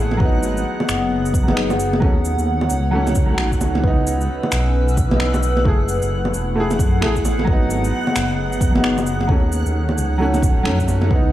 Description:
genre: future garage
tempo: 132 BPM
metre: 4/4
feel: swing 61% on 16ths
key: unclear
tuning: A4 = 441 Hz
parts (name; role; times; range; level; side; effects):
- warm upright piano; accompaniment; 0.0-11.3 s; E3 to G#4; -23 LUFS; right 1 dB; sidechain pumping, tape echo
- warbly tape-like pad; sustained chords; 0.0-11.3 s; A3 to E6; -24 LUFS; left 2 dB; chorus, built-in reverb, phaser, sidechain pumping
- dark detuned saw bass; bass; 0.0-11.3 s; D#1 to F#2; -21 LUFS; equal; sidechain pumping
- backwards swelling texture; texture; 0.0-11.3 s; F#5; -31 LUFS; right 2 dB; built-in reverb
- electronic bongos, shaker and finger snaps; drums; 0.1-11.1 s; none; -24 LUFS; right 1 dB; none
- electronic kick drum; drums; 0.2-11.2 s; none; -18 LUFS; equal; none
room: light reverb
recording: vinyl crackle, studio ambience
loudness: -16 LUFS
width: side -13 dB against mid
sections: 0.0-11.3 A section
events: none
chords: 0.2 G#m7; 2.0 D#m7b5; 3.8 C#m7; 5.7 F#m7; 7.5 G#m7; 9.3 D#m7b5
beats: | 0.20 0.66 1.11 1.57 | 2.02 2.48 2.93 3.38 | 3.84 4.29 4.75 5.20 | 5.66 6.11 6.57 7.02 | 7.47 7.93 8.38 8.84 | 9.29 9.75 10.20 10.66 | 11.11

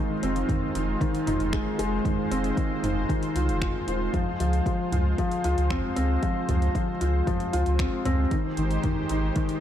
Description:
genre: piano and strings electronica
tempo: 115 BPM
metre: 4/4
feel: straight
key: F minor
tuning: A4 = 445 Hz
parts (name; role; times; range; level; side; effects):
- lush unison pad; sustained chords; 0.0-9.6 s; Ab3 to C5; -32 LUFS; right 1 dB; chorus, sidechain pumping
- felt-muted upright piano; riff; 0.0-9.6 s; Eb3 to F4; -27 LUFS; left 2 dB; digital delay
- warm sub bass; bass; 0.2-9.3 s; Eb1 to Db2; -26 LUFS; equal; sidechain pumping
- deep house drum kit; drums; 0.2-9.6 s; finger snaps, hi-hat, toms; -35 LUFS; right 1 dB; overdrive
- electronic kick drum; drums; 0.5-9.5 s; none; -29 LUFS; equal; overdrive
room: light reverb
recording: dark, warm production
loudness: -23 LUFS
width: side -10 dB against mid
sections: 0.0-9.6 A section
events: none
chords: 0.0 Fm7; 4.1 Dbmaj7; 8.3 Abmaj7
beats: 0.49 1.01 1.53 | 2.05 2.58 3.10 3.62 | 4.14 4.66 5.18 5.71 | 6.23 6.75 7.27 7.79 | 8.31 8.84 9.36

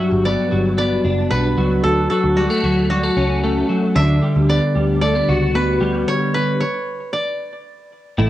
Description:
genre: jangly indie pop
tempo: 113 BPM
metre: 4/4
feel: straight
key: unclear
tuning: A4 = 440 Hz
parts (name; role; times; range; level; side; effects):
- koto; melody; 0.0-8.3 s; F#4 to E5; -22 LUFS; right 1 dB; cassette tape, plate reverb
- twelve-string electric guitar; arpeggios; 0.0-8.3 s; G2 to F#4; -17 LUFS; left 1 dB; ensemble chorus
- vintage muted picked electric bass; bass; 0.1-8.3 s; F#1 to D2; -21 LUFS; right 1 dB; none
room: moderate studio reverb, RT60 0.6 s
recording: home recording on cassette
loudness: -15 LUFS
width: side -14 dB against mid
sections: 0.0-8.2 A section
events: stop 6.1-8.2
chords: 0.0 Gmaj7; 1.8 Dmaj7; 4.0 Gmaj7/D; 6.1 N.C.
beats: 0.25 0.78 1.31 | 1.84 2.37 2.90 3.43 | 3.96 4.49 5.02 5.55 | 6.08 6.61 7.13 7.66 | 8.19

